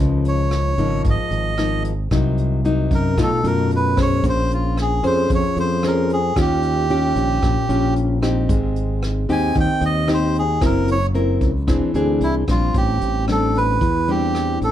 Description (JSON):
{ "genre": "bossa nova", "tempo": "113 BPM", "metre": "4/4", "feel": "straight", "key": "unclear", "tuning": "A4 = 439 Hz", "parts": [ { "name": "nylon-string guitar", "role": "accompaniment", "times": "0.0-14.7 s", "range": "Ab2 to C5", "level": "-20 LUFS", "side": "left 2 dB", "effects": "none" }, { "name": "modern bright fingered electric bass", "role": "bass", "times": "0.0-14.7 s", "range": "E1 to Gb2", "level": "-21 LUFS", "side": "equal", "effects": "none" }, { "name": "vintage brush drum kit", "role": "drums", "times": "0.2-14.7 s", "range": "hi-hat, kick drum, rim click", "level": "-23 LUFS", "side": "equal", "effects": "none" }, { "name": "melodica", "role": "melody", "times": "0.3-14.7 s", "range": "E4 to Ab5", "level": "-22 LUFS", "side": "right 2 dB", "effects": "none" } ], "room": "moderate small room reverb, RT60 0.5 s", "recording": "heard from further back in the room", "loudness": "-16 LUFS", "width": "side -11 dB against mid", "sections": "0.0-12.7 A section; 12.7-14.7 B section", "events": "melodica solo 0.0-12.7", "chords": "0.0 Db69; 2.1 Cm7b5; 3.2 B7#11; 4.2 Bbm9; 6.4 Eb9; 8.5 Abmaj7; 10.6 Gb7#11; 11.7 E7alt; 12.7 Am11" }